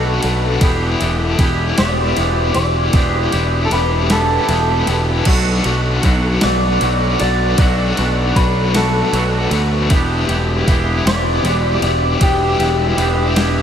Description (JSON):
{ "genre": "indie rock", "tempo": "52 BPM (dotted quarters)", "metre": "6/8", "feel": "straight", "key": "unclear", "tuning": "A4 = 441 Hz", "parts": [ { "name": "electric guitar through a small old amp", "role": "melody", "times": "0.0-13.6 s", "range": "G4 to D5", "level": "-20 LUFS", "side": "equal", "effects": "spring reverb, diffuse ambient delay" }, { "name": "tonewheel organ", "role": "sustained chords", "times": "0.0-13.6 s", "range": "G4 to E6", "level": "-29 LUFS", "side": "equal", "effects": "none" }, { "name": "biting overdriven guitar", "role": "riff", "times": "0.0-13.6 s", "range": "E3 to G4", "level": "-21 LUFS", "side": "left 5 dB", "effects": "tremolo" }, { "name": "twangy electric guitar", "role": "riff", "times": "0.0-13.6 s", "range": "E3 to G4", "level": "-24 LUFS", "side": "right 5 dB", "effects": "wide subtle chorus, diffuse ambient delay" }, { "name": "fuzz picked electric bass", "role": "bass", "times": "0.0-13.6 s", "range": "E1 to D2", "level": "-18 LUFS", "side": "equal", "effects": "overdrive" }, { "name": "detuned 8-bit digital drum machine", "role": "drums", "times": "0.2-13.5 s", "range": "crash cymbal, kick drum, ride cymbal, snare drum", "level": "-20 LUFS", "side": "equal", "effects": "none" } ], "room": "moderate huge ambient reverb, RT60 6.4 s", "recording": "dreamy mix soaked in reverb", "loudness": "-13 LUFS", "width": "side -8 dB against mid", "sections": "0.0-13.6 A section", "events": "none", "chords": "0.0 Bm7; 0.6 Em7; 5.3 Bm7; 9.9 Em7", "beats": "| 0.62 1.78 | 2.95 4.11 | 5.27 6.43 | 7.59 8.75 | 9.91 11.06 | 12.22 13.37" }